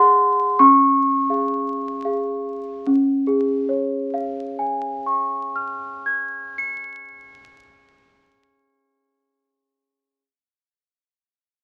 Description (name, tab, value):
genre	classical, lullaby for celesta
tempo	70-93 BPM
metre	3/4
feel	straight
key	Db major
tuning	A4 = 435 Hz
part	celesta	solo	0.0-10.2 s	Db4 to Db7	-20 LUFS	equal	none
room	wet small room reverb, RT60 0.5 s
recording	very old 78 rpm record, vinyl crackle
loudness	-21 LUFS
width	mono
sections	0.0-2.9 A section; 2.9-8.0 B section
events	slowing down 0.0-2.9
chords	0.0 Ab7; 0.6 Db